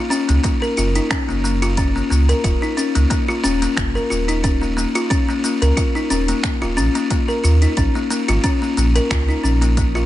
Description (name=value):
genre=organic downtempo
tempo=90 BPM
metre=4/4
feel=swing 54% on 16ths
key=unclear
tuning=A4 = 440 Hz
part: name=buzzing kalimba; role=arpeggios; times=0.0-10.1 s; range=Bb3 to Bb4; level=-19 LUFS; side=left 2 dB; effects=ping-pong delay, shimmer reverb
part: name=organic electronic drum kit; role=drums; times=0.1-10.1 s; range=finger snaps, hi-hat, shaker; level=-27 LUFS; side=left 1 dB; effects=none
part: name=warm sub bass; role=bass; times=0.3-10.1 s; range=Eb1 to Eb2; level=-18 LUFS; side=right 1 dB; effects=sidechain pumping
part: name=electronic kick drum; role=drums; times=0.4-9.9 s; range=none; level=-21 LUFS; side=right 1 dB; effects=overdrive
room=light reverb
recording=nothing above 10.7 kHz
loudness=-16 LUFS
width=side -14 dB against mid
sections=0.0-10.1 A section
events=none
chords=0.0 Gb; 2.4 Eb7(no3); 7.8 Bbm